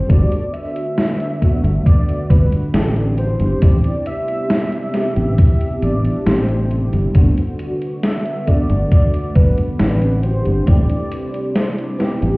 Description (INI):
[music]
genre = vaporwave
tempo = 68 BPM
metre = 4/4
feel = straight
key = G major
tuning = A4 = 440 Hz
[part]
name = warm velvety synth lead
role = melody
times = 0.0-12.4 s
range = G4 to E5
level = -26 LUFS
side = equal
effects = chorus, tape echo
[part]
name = FM electric piano with soft pad layer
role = accompaniment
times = 0.0-12.4 s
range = A3 to G4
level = -23 LUFS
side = equal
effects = phaser, ensemble chorus, tape echo
[part]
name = warbly tape-like pad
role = sustained chords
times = 0.8-12.4 s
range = C3 to F#5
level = -26 LUFS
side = equal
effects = chorus, built-in reverb
[part]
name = sustaining fretless electric bass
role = bass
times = 0.1-12.4 s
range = G1 to A1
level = -16 LUFS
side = equal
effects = wide subtle chorus
[part]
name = electronic kick drum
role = drums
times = 0.1-10.9 s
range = none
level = -13 LUFS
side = equal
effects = vintage 12-bit sampler grit
[part]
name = gated 80s digital drum machine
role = drums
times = 0.1-12.4 s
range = hi-hat, snare drum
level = -21 LUFS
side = equal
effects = gated reverb, gated reverb snare, vintage 12-bit sampler grit
[sound]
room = light reverb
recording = heard muffled through a wall, stone room reverb, cassette tape, EQ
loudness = -14 LUFS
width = side -25 dB against mid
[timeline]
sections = 0.0-12.4 A section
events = none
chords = 0.1 Gmaj7; 3.2 Am7; 7.2 Gmaj7; 10.2 Am7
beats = | 0.09 0.97 1.86 2.74 | 3.62 4.50 5.39 6.27 | 7.15 8.03 8.92 9.80 | 10.68 11.56